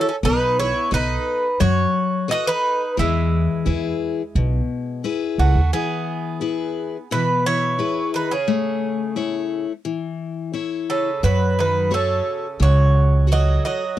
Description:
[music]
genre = greek folk, Greek bouzouki band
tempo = 87 BPM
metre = 4/4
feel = straight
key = E major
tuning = A4 = 440 Hz
[part]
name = Greek bouzouki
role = melody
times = 0.0-14.0 s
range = E4 to D#5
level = -23 LUFS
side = right 1 dB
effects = none
[part]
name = Greek bouzouki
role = second line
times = 0.0-14.0 s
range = C#3 to F#4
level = -27 LUFS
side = right 6 dB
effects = none
[part]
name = picked steel-string acoustic guitar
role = accompaniment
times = 0.0-14.0 s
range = B2 to D#5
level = -24 LUFS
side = left 7 dB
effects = none
[part]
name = upright bass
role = bass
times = 0.2-5.7, 11.2-13.6 s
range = B1 to F#2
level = -18 LUFS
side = right 1 dB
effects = none
[sound]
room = light reverb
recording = dry, close 1970s-style studio recording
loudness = -18 LUFS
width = side -12 dB against mid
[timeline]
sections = 0.0-5.7 A section; 5.7-14.0 B section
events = none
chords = 0.2 B7; 3.0 E; 8.5 A; 11.2 F#m

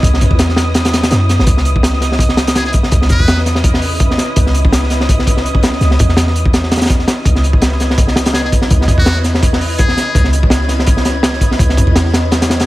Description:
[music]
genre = drum and bass, jungle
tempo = 166 BPM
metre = 4/4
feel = swing 54% on 16ths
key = C# minor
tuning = A4 = 440 Hz
[part]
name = warm 808-style bass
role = bass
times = 0.0-12.7 s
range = G#1 to F#2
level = -15 LUFS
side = equal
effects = none
[part]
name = crunchy breakbeat drum kit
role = drums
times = 0.0-12.7 s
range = hi-hat, kick drum, snare drum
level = -12 LUFS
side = equal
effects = none
[part]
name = wind-like tuned noise texture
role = texture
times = 0.0-12.7 s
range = D#6 to G#6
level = -26 LUFS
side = right 1 dB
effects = built-in reverb
[part]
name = trumpet with metal mute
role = melody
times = 2.6-3.4, 8.3-10.3 s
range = F#4 to B4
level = -24 LUFS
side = left 1 dB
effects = dub echo
[sound]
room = small room ambience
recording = vinyl crackle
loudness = -10 LUFS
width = side -17 dB against mid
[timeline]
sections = 0.0-12.7 A section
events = none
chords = 0.0 C#m9

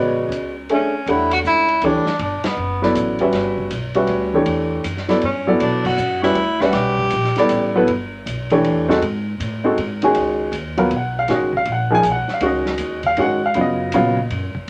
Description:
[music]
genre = modal jazz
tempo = 159 BPM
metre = 3/4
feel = swing 65% on 8ths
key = E dorian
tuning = A4 = 440 Hz
[part]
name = clear upright piano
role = accompaniment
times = 0.0-14.3 s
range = C#3 to G#5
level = -20 LUFS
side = equal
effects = none
[part]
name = upright bass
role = bass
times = 0.0-14.6 s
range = F#1 to B2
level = -29 LUFS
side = equal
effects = none
[part]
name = vintage drum kit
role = drums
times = 0.3-14.6 s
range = crash cymbal, hi-hat, kick drum, ride cymbal, snare drum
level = -32 LUFS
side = equal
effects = none
[part]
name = clear tenor saxophone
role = melody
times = 0.7-2.8, 5.2-7.7 s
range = B3 to G4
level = -22 LUFS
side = equal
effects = none
[sound]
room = moderate studio reverb, RT60 0.6 s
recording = none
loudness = -19 LUFS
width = mono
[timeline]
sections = 0.0-1.1 A section; 1.1-10.2 B section; 10.2-14.7 C section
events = band accent 2.4, 5.8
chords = 0.0 E13sus4; 1.1 Em9; 9.0 G#7(no3); 10.2 C#13sus4

